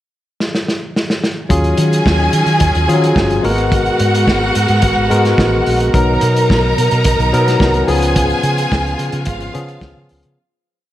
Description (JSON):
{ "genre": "disco", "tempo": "108 BPM", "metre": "4/4", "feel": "straight", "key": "unclear", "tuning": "A4 = 441 Hz", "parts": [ { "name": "vintage drum kit", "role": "drums", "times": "0.4-10.4 s", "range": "hi-hat, kick drum, snare drum", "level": "-18 LUFS", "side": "equal", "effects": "none" }, { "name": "warm symphonic violin section", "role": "second line", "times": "1.5-10.4 s", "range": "F4 to A#5", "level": "-18 LUFS", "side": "right 1 dB", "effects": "none" }, { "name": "barky tine electric piano", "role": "accompaniment", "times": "1.5-10.4 s", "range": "F3 to Bb4", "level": "-17 LUFS", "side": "left 2 dB", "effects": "medium stereo tremolo" }, { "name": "clear studio string section", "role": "sustained chords", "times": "1.5-10.4 s", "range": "Db3 to Bb4", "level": "-23 LUFS", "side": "right 1 dB", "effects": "none" }, { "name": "hollow-body short-scale fingered electric bass", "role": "bass", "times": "1.5-10.4 s", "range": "G1 to Eb3", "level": "-16 LUFS", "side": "equal", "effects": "none" } ], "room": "light reverb, studio reverb", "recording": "none", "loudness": "-12 LUFS", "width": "side -13 dB against mid", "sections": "0.0-1.5 pickup bar; 1.5-10.4 verse", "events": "drum fill 0.4-1.5; fade-out 8.2-10.4", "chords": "0.0 N.C.; 1.5 Ebm11; 3.4 Abm9; 5.9 Bmaj7; 7.9 Db7" }